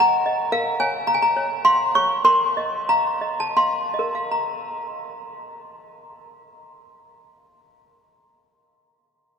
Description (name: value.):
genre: classical, lullaby for toy piano.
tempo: 78-113 BPM.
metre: 3/4.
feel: rubato.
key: Bb minor.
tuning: A4 = 440 Hz.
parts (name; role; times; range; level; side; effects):
toy piano; solo; 0.0-7.9 s; Bb4 to Db6; -19 LUFS; equal; none.
room: wet cathedral reverb, RT60 6.6 s.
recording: recorded in a church or concert hall.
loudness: -18 LUFS.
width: side -6 dB against mid.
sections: 0.0-4.3 A section; 4.3-8.8 B section.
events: slowing down 0.0-4.3.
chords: 0.0 Ebm; 0.5 Bbm; 2.2 F5/Bb; 4.3 Bb5.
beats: | 0.52 1.07 1.64 | 2.24 2.88 3.56 | 4.31 5.07 5.83 | 6.57 7.32.